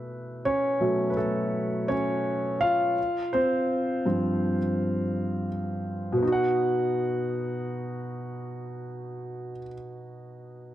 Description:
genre	R&B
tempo	83 BPM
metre	4/4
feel	swing 62% on 16ths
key	unclear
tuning	A4 = 438 Hz
part	warm grand piano	solo	0.0-10.7 s	G2 to F#5	-26 LUFS	equal	none
room	light reverb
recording	dark, warm production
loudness	-24 LUFS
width	side -13 dB against mid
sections	0.0-6.2 A section; 6.2-9.1 B section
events	grand piano solo 0.0-6.2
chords	0.0 B9sus4; 3.0 G7sus4; 6.2 B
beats	| 0.44 1.17 1.89 2.61 | 3.34 4.06 4.78 5.50 | 6.23 6.95 7.67 8.40

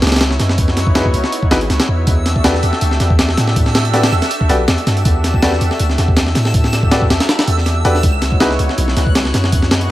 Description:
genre	drum and bass, jungle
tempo	161 BPM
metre	4/4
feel	swing 53% on 16ths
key	unclear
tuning	A4 = 440 Hz
part	lush unison pad	sustained chords	0.0-9.9 s	B3 to E5	-22 LUFS	equal	chorus
part	long sustained 808-style bass	bass	0.0-9.9 s	G#1 to A2	-16 LUFS	equal	none
part	breakbeat sampler-style drum kit	drums	0.0-9.9 s	hi-hat, kick drum, snare drum	-15 LUFS	equal	none
part	backwards swelling texture	texture	0.1-9.9 s	E6 to F#6	-26 LUFS	right 2 dB	built-in reverb
part	warm concert grand piano	stabs	1.0-8.5 s	D#4 to D5	-21 LUFS	left 1 dB	dub echo
room	light reverb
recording	vinyl crackle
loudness	-12 LUFS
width	side -15 dB against mid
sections	0.0-9.9 A section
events	kick drops out 7.3-8.0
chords	0.0 C#m11; 2.1 Em11; 8.0 C#m11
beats	0.21 | 0.58 0.95 1.32 1.70 | 2.07 2.44 2.82 3.19 | 3.56 3.93 4.31 4.68 | 5.05 5.42 5.80 6.17 | 6.54 6.92 7.29 7.66 | 8.03 8.41 8.78 9.15 | 9.52 9.90

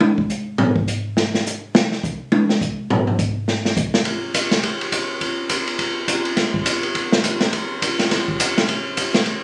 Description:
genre	jazz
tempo	207 BPM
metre	4/4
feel	swing 60% on 8ths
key	none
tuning	none
part	open jazz drum kit	drums	0.0-9.3 s	hi-hat, kick drum, ride cymbal, snare drum, toms	-20 LUFS	equal	none
room	wet studio ambience, RT60 0.5 s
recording	recorded on a phone in the room, studio ambience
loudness	-20 LUFS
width	mono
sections	0.0-4.1 A section; 4.1-9.4 B section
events	drum solo 0.0-4.1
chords	none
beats	0.01 0.30 | 0.59 0.88 1.17 1.46 | 1.75 2.04 2.32 2.61 | 2.90 3.19 3.48 3.77 | 4.06 4.35 4.64 4.93 | 5.22 5.51 5.80 6.08 | 6.37 6.66 6.95 7.24 | 7.53 7.82 8.11 8.40 | 8.69 8.98 9.27

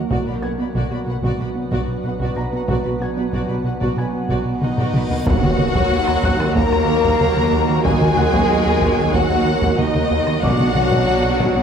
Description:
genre	cinematic, hybrid orchestral and electronic film score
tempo	93 BPM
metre	4/4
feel	straight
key	Eb harmonic minor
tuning	A4 = 439 Hz
part	rich chamber violin section	melody	0.0-11.6 s	D5 to B5	-25 LUFS	left 4 dB	none
part	mellow French horn section	sustained chords	0.0-11.6 s	Eb3 to F#4	-25 LUFS	left 4 dB	none
part	organ-like drone	sustained chords	0.0-11.6 s	F#3 to F#5	-26 LUFS	right 1 dB	ensemble chorus, built-in reverb
part	round analog bass	riff	0.0-11.6 s	Eb2 to B3	-23 LUFS	right 1 dB	none
part	felt-muted upright piano	texture	0.0-11.6 s	Gb5 to Bb6	-35 LUFS	equal	ping-pong delay
part	warm symphonic violin section	second line	0.1-11.6 s	Eb4 to D5	-26 LUFS	left 2 dB	none
part	rich symphonic viola section	accompaniment	0.1-11.6 s	Bb3 to F#4	-25 LUFS	right 2 dB	none
part	rich symphonic double bass section	bass	0.1-11.6 s	B1 to Eb2	-27 LUFS	right 2 dB	none
part	warm symphonic cello section	bass	0.1-11.6 s	Eb2 to B2	-27 LUFS	right 4 dB	none
part	solo taiko drums	drums	0.1-11.6 s	none	-24 LUFS	equal	none
part	reverse cymbal and impact	sound effects	5.1-7.9 s	none	-28 LUFS	equal	none
room	wet concert hall reverb, RT60 2.2 s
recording	none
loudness	-16 LUFS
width	side -7 dB against mid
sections	0.0-5.3 A section; 5.3-11.6 B section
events	drum fill 4.6-5.3; reverse cymbal 5.1; impact 5.3-7.9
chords	0.1 Bm; 5.3 Ebm; 10.4 Bm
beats	| 0.11 0.75 1.40 2.04 | 2.69 3.33 3.98 4.62 | 5.27 5.92 6.56 7.21 | 7.85 8.50 9.14 9.79 | 10.43 11.08

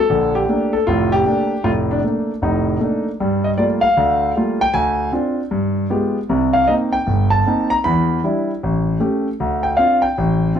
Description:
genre	solo jazz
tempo	155 BPM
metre	4/4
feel	swing 66% on 8ths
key	Bb major, G minor from 3.2 s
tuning	A4 = 440 Hz
part	warm concert grand piano	solo	0.0-10.6 s	F1 to B5	-15 LUFS	equal	none
room	wet studio ambience, RT60 0.5 s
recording	heard from further back in the room, lossy compression artefacts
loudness	-15 LUFS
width	side -8 dB against mid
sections	0.0-3.2 A section; 3.2-10.6 B section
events	none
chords	0.1 Bbmaj7; 3.2 Gm9; 4.7 Dm7b5; 5.5 G7b9; 6.3 Cm7; 7.8 Em7; 8.6 A7; 9.4 Dm7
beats	| 0.10 0.49 0.87 1.26 | 1.65 2.03 2.42 2.81 | 3.19 3.58 3.97 4.36 | 4.74 5.13 5.52 5.91 | 6.29 6.68 7.07 7.46 | 7.84 8.23 8.62 9.01 | 9.39 9.78 10.17 10.55

